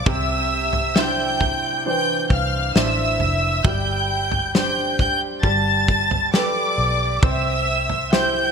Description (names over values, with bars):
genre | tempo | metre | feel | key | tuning
pop ballad | 67 BPM | 4/4 | straight | C major | A4 = 440 Hz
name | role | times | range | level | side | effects
dark studio violin section | melody | 0.0-8.5 s | D5 to A6 | -21 LUFS | equal | none
bright grand piano | accompaniment | 0.0-8.5 s | C3 to C5 | -25 LUFS | right 2 dB | lush chorus
vintage muted fingered electric bass | bass | 0.0-8.5 s | F1 to C2 | -26 LUFS | equal | none
loose indie drum kit | drums | 0.1-8.3 s | kick drum, snare drum, toms | -21 LUFS | equal | none
room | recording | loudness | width
light reverb, small room ambience | bright 1980s-style digital production | -18 LUFS | side -6 dB against mid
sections
0.0-8.5 A section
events
none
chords
0.1 Cadd9; 3.6 Gsus4; 5.4 Gadd9; 7.2 C